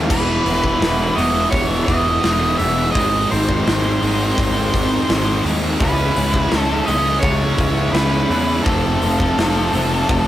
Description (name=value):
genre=quiet-loud alternative rock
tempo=84 BPM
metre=4/4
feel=straight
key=E major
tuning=A4 = 440 Hz
part: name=fuzz guitar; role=riff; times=0.0-10.3 s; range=G#2 to F4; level=-24 LUFS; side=right 3 dB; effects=distortion
part: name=thick fuzz guitar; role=riff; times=0.0-10.3 s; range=G#2 to F4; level=-26 LUFS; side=left 2 dB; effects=none
part: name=tight distorted guitar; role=riff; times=0.0-10.3 s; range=E2 to C#4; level=-24 LUFS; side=equal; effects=distortion
part: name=fuzz picked electric bass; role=bass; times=0.0-10.3 s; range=E1 to E2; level=-20 LUFS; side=equal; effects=overdrive
part: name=octave-fuzz lead guitar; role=melody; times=0.1-10.3 s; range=A4 to E5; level=-21 LUFS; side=equal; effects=distortion
part: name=huge arena drum kit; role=drums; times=0.1-10.3 s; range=crash cymbal, hi-hat, kick drum, snare drum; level=-21 LUFS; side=equal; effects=none
room=moderate small room reverb, RT60 0.5 s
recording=rough rehearsal-room recording, warm saturation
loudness=-15 LUFS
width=side -13 dB against mid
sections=0.0-10.3 A section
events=none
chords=0.1 E; 3.0 G#; 5.8 C#m; 8.7 F